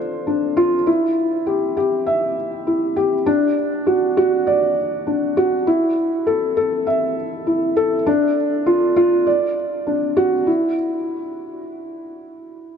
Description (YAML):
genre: electronica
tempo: 100 BPM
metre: 4/4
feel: straight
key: unclear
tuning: A4 = 440 Hz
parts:
  - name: felt-muted upright piano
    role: solo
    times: 0.0-12.8 s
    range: D4 to E5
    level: -17 LUFS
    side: equal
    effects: none
room: moderate huge ambient reverb, RT60 5.3 s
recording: none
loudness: -16 LUFS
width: side -7 dB against mid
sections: 0.0-10.5 A section; 10.5-12.8 B section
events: drop 0.0-10.5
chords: none